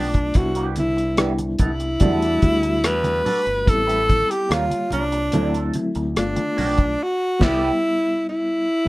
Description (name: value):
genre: lush 1970s-style soul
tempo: 72 BPM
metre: 4/4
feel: straight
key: unclear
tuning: A4 = 440 Hz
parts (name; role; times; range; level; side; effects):
- breathy tenor saxophone; melody; 0.0-8.9 s; D4 to B4; -21 LUFS; equal; none
- reed electric piano; accompaniment; 0.0-8.9 s; F#3 to C#5; -26 LUFS; left 2 dB; fast tremolo
- electric guitar through a small old amp; riff; 0.0-7.7 s; F3 to B4; -29 LUFS; right 5 dB; wah
- modern bright fingered electric bass; bass; 0.0-7.7 s; G1 to E2; -26 LUFS; equal; none
- cloth-damped thuddy drum kit; drums; 0.1-7.7 s; crash cymbal, hi-hat, kick drum, rim click, snare drum; -20 LUFS; equal; none
- congas; percussion; 0.4-6.8 s; none; -28 LUFS; right 2 dB; none
room: moderate studio reverb, RT60 0.5 s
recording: rough home demo mix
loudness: -18 LUFS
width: side -20 dB against mid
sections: 0.0-8.9 A section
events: band accent 7.0-8.9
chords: 0.4 Cmaj7; 2.0 Em11; 3.7 Am7; 4.5 D#9; 5.3 D7; 6.2 G7; 7.0 Cmaj7